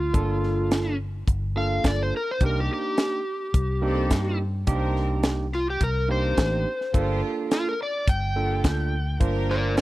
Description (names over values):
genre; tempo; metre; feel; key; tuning
straight-eighth soul blues; 106 BPM; 4/4; straight; G minor; A4 = 435 Hz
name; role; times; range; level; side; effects
overdriven slide guitar; melody; 0.0-9.8 s; F4 to G5; -28 LUFS; left 1 dB; none
vintage muted fingered electric bass; bass; 0.0-9.8 s; G1 to G2; -26 LUFS; equal; none
overdriven tine electric piano; accompaniment; 0.1-9.8 s; Bb3 to C5; -29 LUFS; right 4 dB; none
tight funk drum kit; drums; 0.1-9.8 s; hi-hat, kick drum, snare drum; -22 LUFS; equal; none
clear studio string section; sustained chords; 2.4-9.8 s; C4 to Bb4; -36 LUFS; left 2 dB; none
room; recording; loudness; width
small room ambience; dry, close 1970s-style studio recording; -22 LUFS; side -17 dB against mid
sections
0.0-9.8 A section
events
electric slide guitar solo 0.0-9.8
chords
0.0 Gm7; 2.4 Cm7; 6.9 Gm7